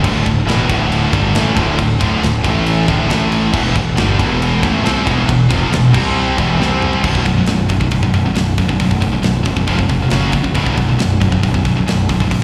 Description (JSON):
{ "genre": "heavy metal", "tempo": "137 BPM", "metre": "4/4", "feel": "straight", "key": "B minor", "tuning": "A4 = 440 Hz", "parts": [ { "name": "distorted electric guitar", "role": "riff", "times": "0.0-12.4 s", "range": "B1 to C4", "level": "-21 LUFS", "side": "equal", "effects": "overdrive, slapback echo" }, { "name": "scooped high-gain guitar", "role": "riff", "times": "0.0-12.4 s", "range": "B1 to C4", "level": "-20 LUFS", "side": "equal", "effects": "distortion, slapback echo" }, { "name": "thick fuzz guitar", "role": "riff", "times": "0.0-7.0 s", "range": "D2 to C4", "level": "-25 LUFS", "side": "equal", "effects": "none" }, { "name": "fuzz fingered electric bass", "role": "bass", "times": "0.0-12.4 s", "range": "B0 to C2", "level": "-20 LUFS", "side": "equal", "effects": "overdrive" }, { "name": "tight metal drum kit", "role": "drums", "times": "0.0-12.4 s", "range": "crash cymbal, hi-hat, kick drum, ride cymbal, snare drum, toms", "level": "-22 LUFS", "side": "equal", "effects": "none" } ], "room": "small room reverb", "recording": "live gig heard through the venue's PA, recital hall reverb", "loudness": "-15 LUFS", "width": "mono", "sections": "0.0-7.0 A section; 7.0-12.4 B section", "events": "drum fill 6.6-7.0", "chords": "0.0 D5; 2.4 A5; 2.9 D5; 3.1 A5; 3.5 E5; 5.9 C5; 6.4 E5; 6.6 C5; 7.0 B5; 9.7 F5; 10.1 F#5; 10.5 B5", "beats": "| 0.04 0.47 0.91 1.35 | 1.78 2.22 2.66 3.10 | 3.54 3.97 4.41 4.85 | 5.29 5.72 6.16 6.60 | 7.04 7.48 7.92 8.36 | 8.79 9.23 9.67 10.11 | 10.55 10.99 11.43 11.86 | 12.30" }